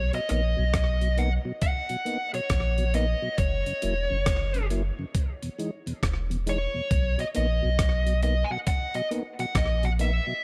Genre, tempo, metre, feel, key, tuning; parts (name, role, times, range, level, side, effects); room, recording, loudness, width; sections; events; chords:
roots reggae; 68 BPM; 4/4; swing 63% on 16ths; B major; A4 = 440 Hz
dark smooth lead guitar; melody; 0.0-10.4 s; C#5 to G#5; -32 LUFS; equal; overdrive, dub echo
warm sub bass; bass; 0.0-10.2 s; E1 to B1; -28 LUFS; equal
mellow tonewheel organ; accompaniment; 0.1-10.3 s; E2 to E4; -36 LUFS; equal; slow rotary speaker
breakbeat sampler-style drum kit; drums; 0.1-10.3 s; hi-hat, kick drum, rim click; -30 LUFS; equal
little or no reverb; -27 LUFS; mono
0.0-10.4 A section
0.0 Bmaj7; 3.4 F#7; 5.1 Emaj7; 6.9 Bmaj7